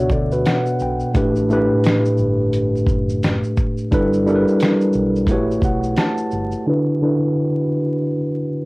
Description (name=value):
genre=lo-fi hip hop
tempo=87 BPM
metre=4/4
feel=swing 63% on 16ths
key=D major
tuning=A4 = 440 Hz
part: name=mellow tine electric piano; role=second line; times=0.0-1.1 s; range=F#4 to D5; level=-24 LUFS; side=left 1 dB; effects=medium stereo tremolo, tape echo, plate reverb
part: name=tine electric piano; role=accompaniment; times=0.0-8.7 s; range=A2 to A5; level=-17 LUFS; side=equal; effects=overdrive, fast stereo tremolo, cassette tape, low-pass filter
part: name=hollow-body short-scale fingered electric bass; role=bass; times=0.0-6.5 s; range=F#1 to D2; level=-26 LUFS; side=equal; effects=none
part: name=dusty soul sampler-style drum kit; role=drums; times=0.0-6.6 s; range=hi-hat, kick drum, shaker, snare drum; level=-20 LUFS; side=equal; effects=cassette tape
room=wet studio ambience, RT60 0.5 s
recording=home recording on cassette, vinyl crackle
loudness=-16 LUFS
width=side -23 dB against mid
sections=0.0-6.7 A section; 6.7-8.7 B section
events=filter sweep on tine electric piano 6.7-8.7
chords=0.0 Bm9; 1.1 A7sus4; 3.9 G69; 5.3 A13; 6.7 D69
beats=0.46 | 1.15 1.84 2.53 3.22 | 3.91 4.60 5.29 5.98 | 6.67 7.36 8.05